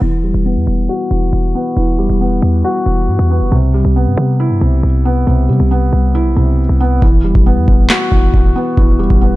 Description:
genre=hip hop, trap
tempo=137 BPM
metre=4/4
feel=half-time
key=E minor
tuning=A4 = 440 Hz
part: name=felt-muted upright piano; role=accompaniment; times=0.0-9.4 s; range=C3 to F#4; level=-15 LUFS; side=left 1 dB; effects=low-pass filter
part: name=warm 808-style bass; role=bass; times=0.0-9.4 s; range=E1 to C3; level=-14 LUFS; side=equal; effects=none
part: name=booming analog drum machine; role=drums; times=7.0-9.3 s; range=handclaps, kick drum, snare drum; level=-10 LUFS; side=equal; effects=overdrive, vintage 12-bit sampler grit
room=digital ambience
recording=dark, warm production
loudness=-10 LUFS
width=side -18 dB against mid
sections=0.0-7.0 A section; 7.0-9.4 B section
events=filter sweep on felt piano 0.0-7.0; hi-hats muted 7.0-9.4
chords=0.0 Emadd9; 3.5 Cmaj7; 7.0 Emadd9

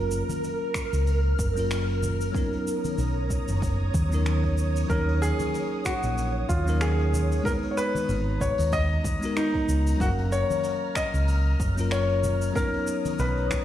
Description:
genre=sunset chillout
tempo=94 BPM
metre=4/4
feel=swing 56% on 16ths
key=unclear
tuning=A4 = 440 Hz
part: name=bell-like tine electric piano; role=accompaniment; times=0.0-13.6 s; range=Gb3 to F5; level=-31 LUFS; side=left 2 dB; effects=auto-pan, ping-pong delay
part: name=ethereal airy pad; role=sustained chords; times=0.0-13.6 s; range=Bb4 to F6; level=-34 LUFS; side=right 1 dB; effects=ensemble chorus, built-in reverb
part: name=hollow-body short-scale fingered electric bass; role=bass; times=0.0-13.6 s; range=Gb1 to D#2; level=-25 LUFS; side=equal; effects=none
part: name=vintage brush drum kit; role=drums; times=0.1-13.6 s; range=finger snaps, hi-hat, shaker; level=-38 LUFS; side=equal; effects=none
part: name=congas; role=percussion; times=0.3-13.6 s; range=none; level=-36 LUFS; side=left 2 dB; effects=none
part: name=electronic kick drum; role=drums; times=0.8-13.6 s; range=none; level=-30 LUFS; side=equal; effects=overdrive
part: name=warm baby grand piano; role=melody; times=4.9-13.6 s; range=Eb4 to Eb5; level=-28 LUFS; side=left 1 dB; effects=ping-pong delay
room=light reverb, small room ambience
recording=played on a big sound system in a bare room, large studio reverb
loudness=-23 LUFS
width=side -12 dB against mid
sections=0.0-13.6 A section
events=none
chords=0.0 Gbmaj7; 2.3 Bmaj9; 4.9 Ebm7; 7.5 Abm9; 10.0 Gbmaj7; 12.6 Bmaj9

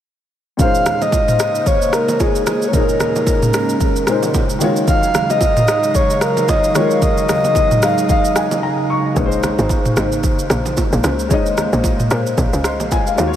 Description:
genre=amapiano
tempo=112 BPM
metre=4/4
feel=swing 58% on 16ths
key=Bb minor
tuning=A4 = 440 Hz
part: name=breathy flute-like synth lead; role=melody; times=0.6-8.6 s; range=Ab4 to F5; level=-18 LUFS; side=equal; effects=chorus, tape echo
part: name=dark grand piano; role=accompaniment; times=0.6-13.4 s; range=Bb2 to Db6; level=-22 LUFS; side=left 4 dB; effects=lush chorus
part: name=hollow soft pad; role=sustained chords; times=0.6-13.4 s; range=Db3 to F5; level=-22 LUFS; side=right 1 dB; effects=chorus, sidechain pumping
part: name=afro-pop drum kit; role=drums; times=0.6-13.4 s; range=kick drum, rim click, shaker, toms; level=-18 LUFS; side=equal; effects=none
part: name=congas and bongos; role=percussion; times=0.6-13.3 s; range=none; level=-27 LUFS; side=right 5 dB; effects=none
part: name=tight log drum bass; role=bass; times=9.2-13.4 s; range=Ab1 to Bb2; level=-19 LUFS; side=equal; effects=none
room=moderate huge ambient reverb, RT60 8.8 s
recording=dreamy mix soaked in reverb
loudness=-13 LUFS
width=side -10 dB against mid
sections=0.6-13.4 A section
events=grand piano fill 7.6-9.2; break 8.6-9.2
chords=0.6 Bbm11; 4.6 Ebm11; 9.2 Bbm11

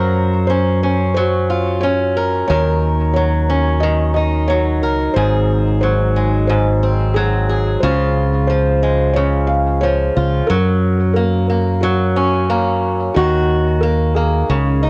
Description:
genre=folktronica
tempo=90 BPM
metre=4/4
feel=swing 56% on 16ths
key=unclear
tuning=A4 = 439 Hz
part: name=felt-muted upright piano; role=melody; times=0.0-14.9 s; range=Gb4 to F5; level=-23 LUFS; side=equal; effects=analog delay
part: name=fingerpicked swing-style acoustic guitar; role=arpeggios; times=0.0-14.9 s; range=Ab2 to Bb4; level=-20 LUFS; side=equal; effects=cassette tape, analog delay
part: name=fingered electric bass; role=bass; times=0.0-14.9 s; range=Ab1 to Gb2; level=-19 LUFS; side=equal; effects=none
room=light reverb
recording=home recording on cassette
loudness=-16 LUFS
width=mono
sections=0.0-14.9 A section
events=none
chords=0.0 Gbmaj7; 2.5 Ebm7; 5.2 Ab7; 7.8 Dbmaj7; 10.5 Gb; 13.2 Ebm

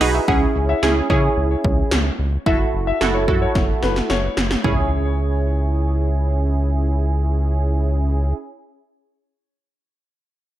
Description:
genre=synth-pop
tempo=110 BPM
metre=4/4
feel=straight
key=C# minor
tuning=A4 = 440 Hz
part: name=funky polysynth comp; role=accompaniment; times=0.0-8.3 s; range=C#4 to B4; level=-22 LUFS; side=right 4 dB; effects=chorus
part: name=round analog bass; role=bass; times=0.0-8.3 s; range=F#1 to C#3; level=-20 LUFS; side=equal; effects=none
part: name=80s electronic pad drums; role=drums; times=0.0-4.8 s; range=hi-hat, kick drum, snare drum, toms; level=-21 LUFS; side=equal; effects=gated reverb on snare and toms, gated reverb
part: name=clear grand piano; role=second line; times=0.3-6.2 s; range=B4 to F#5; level=-26 LUFS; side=left 7 dB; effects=tape echo
room=light reverb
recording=none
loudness=-17 LUFS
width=side -13 dB against mid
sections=0.3-4.6 A section; 4.6-9.0 B section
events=drum fill 3.6-4.6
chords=0.3 C#m; 2.5 F#m7; 4.6 C#m

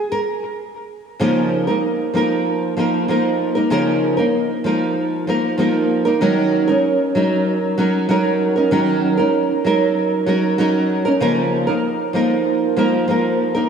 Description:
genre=indie pop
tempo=96 BPM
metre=4/4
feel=straight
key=Db major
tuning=A4 = 443 Hz
part: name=nylon-string guitar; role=solo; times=0.0-13.7 s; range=Db3 to Bb4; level=-16 LUFS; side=right 1 dB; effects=lush chorus, vibrato effect, analog delay
room=wet lush hall reverb, RT60 2.8 s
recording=dreamy mix soaked in reverb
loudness=-16 LUFS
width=side -6 dB against mid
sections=0.0-1.2 A section; 1.2-13.7 B section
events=nylon-string guitar solo 0.0-1.2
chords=0.0 N.C.; 1.2 Db69; 6.2 Ebm7; 11.2 Db69

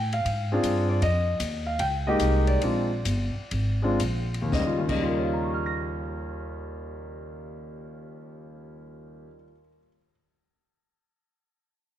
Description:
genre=jazz piano trio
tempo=110-157 BPM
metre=4/4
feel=swing 66% on 8ths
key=Eb mixolydian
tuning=A4 = 437 Hz
part: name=warm concert grand piano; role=melody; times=0.0-10.1 s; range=Eb2 to Bb6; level=-28 LUFS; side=left 1 dB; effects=none
part: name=upright bass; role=bass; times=0.0-9.3 s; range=G1 to A2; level=-28 LUFS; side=equal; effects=none
part: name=open jazz drum kit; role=drums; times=0.1-5.0 s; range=crash cymbal, hi-hat, kick drum, ride cymbal, snare drum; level=-37 LUFS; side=left 4 dB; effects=none
room=light reverb, small room ambience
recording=1960s-style stereo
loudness=-24 LUFS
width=side -11 dB against mid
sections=0.0-4.5 A section; 4.5-8.9 B section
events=slowing down 1.0-4.5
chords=0.0 Bb9 (rootless); 1.0 Fm11; 2.6 Bb9; 4.5 Eb9

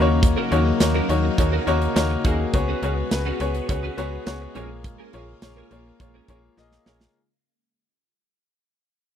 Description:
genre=1980s-style pop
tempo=104 BPM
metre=4/4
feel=straight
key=unclear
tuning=A4 = 440 Hz
part: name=clear concert grand piano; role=accompaniment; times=0.0-7.2 s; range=A#3 to D#5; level=-24 LUFS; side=left 4 dB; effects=none
part: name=phased string machine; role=sustained chords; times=0.0-7.1 s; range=C#3 to F#4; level=-30 LUFS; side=left 1 dB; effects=ensemble chorus, phaser
part: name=twelve-string electric guitar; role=riff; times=0.0-7.1 s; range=C#4 to B4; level=-31 LUFS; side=right 4 dB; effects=ensemble chorus, slapback echo
part: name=slap-like FM bass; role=bass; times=0.0-7.1 s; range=A#1 to D#2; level=-24 LUFS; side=equal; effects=none
part: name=modern studio drum kit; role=drums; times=0.2-7.1 s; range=hi-hat, kick drum, snare drum, tambourine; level=-22 LUFS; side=right 1 dB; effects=none
room=little or no reverb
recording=dry, close 1970s-style studio recording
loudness=-19 LUFS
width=side -9 dB against mid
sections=0.0-7.2 A section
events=fade-out 0.0-7.2; drum fill 6.6-7.2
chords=0.0 D#m7; 2.5 C#7sus4; 4.6 A#m7

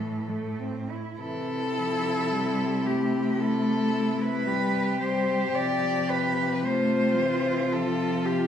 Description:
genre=classical, lyrical piece for cello ensemble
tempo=56 BPM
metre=4/4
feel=rubato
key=C major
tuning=A4 = 440 Hz
part: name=rich cello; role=melody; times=0.0-8.5 s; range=G4 to D5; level=-28 LUFS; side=left 2 dB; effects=none
part: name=rich cello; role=second line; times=0.0-8.5 s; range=E3 to G4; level=-32 LUFS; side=right 5 dB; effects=none
part: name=rich cello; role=accompaniment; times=0.0-8.5 s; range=E3 to A3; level=-30 LUFS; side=equal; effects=none
part: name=rich cello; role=bass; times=0.0-8.5 s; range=A2 to C3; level=-29 LUFS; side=left 2 dB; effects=none
room=wet stone room reverb, RT60 1.2 s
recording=heard from further back in the room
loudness=-24 LUFS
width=side -9 dB against mid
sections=0.0-1.2 A section; 1.2-8.5 B section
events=none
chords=0.0 Am; 1.2 C; 5.6 Dm7/C (rootless)

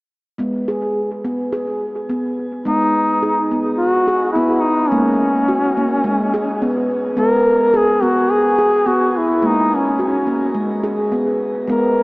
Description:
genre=world meditative, meditative tuned percussion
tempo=106 BPM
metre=4/4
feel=straight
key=G# minor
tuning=A4 = 441 Hz
part: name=handpan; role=arpeggios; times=0.4-12.0 s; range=G#3 to G#4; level=-19 LUFS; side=equal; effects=cassette tape, shimmer reverb, analog delay
part: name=mellow duduk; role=melody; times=2.7-12.0 s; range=C#4 to A#4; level=-16 LUFS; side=equal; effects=cassette tape, shimmer reverb, analog delay
room=wet lush hall reverb, RT60 2.8 s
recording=home recording on cassette, small speaker sound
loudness=-15 LUFS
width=side -24 dB against mid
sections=0.4-2.7 A section; 2.7-12.0 B section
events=none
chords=0.4 G#m; 4.9 F#/G#; 6.0 C#5/G#; 7.2 G#m; 9.4 F#/G#; 10.6 G#madd9

